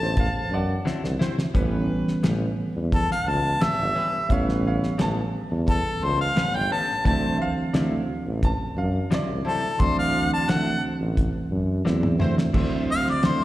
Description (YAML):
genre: straight-eighth soul blues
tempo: 87 BPM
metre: 4/4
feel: straight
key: D mixolydian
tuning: A4 = 445 Hz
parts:
  - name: clear harmonica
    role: melody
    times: 0.0-13.4 s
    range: A4 to A5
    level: -25 LUFS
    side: left 1 dB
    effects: overdrive, slapback echo
  - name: warm upright piano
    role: second line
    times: 0.0-9.5 s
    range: C5 to A5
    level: -32 LUFS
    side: right 2 dB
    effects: slapback echo
  - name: reed electric piano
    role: accompaniment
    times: 0.0-13.4 s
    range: D3 to C#4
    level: -30 LUFS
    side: right 3 dB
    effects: none
  - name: warm tuba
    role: bass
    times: 0.0-13.4 s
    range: G1 to F#2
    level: -26 LUFS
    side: equal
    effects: none
  - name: cloth-damped thuddy drum kit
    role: drums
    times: 0.2-13.4 s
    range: crash cymbal, hi-hat, kick drum, snare drum, toms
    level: -25 LUFS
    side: equal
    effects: none
  - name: direct-recorded clean electric guitar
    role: stabs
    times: 0.9-13.4 s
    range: A2 to E4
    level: -33 LUFS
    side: left 4 dB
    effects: spring reverb, slapback echo
  - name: warm horn section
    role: sustained chords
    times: 1.2-13.2 s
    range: E3 to D5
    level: -36 LUFS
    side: equal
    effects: none
room: light reverb, small room ambience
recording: live gig heard through the venue's PA, recital hall reverb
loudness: -21 LUFS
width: side -15 dB against mid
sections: 0.0-12.5 A section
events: drum fill 0.9-1.5, 11.9-12.5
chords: 0.0 D9; 1.5 A9; 7.0 D9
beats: 0.17 0.86 | 1.55 2.24 2.92 3.61 | 4.30 4.99 5.67 6.36 | 7.05 7.74 8.42 9.11 | 9.80 10.48 11.17 11.86 | 12.54 13.23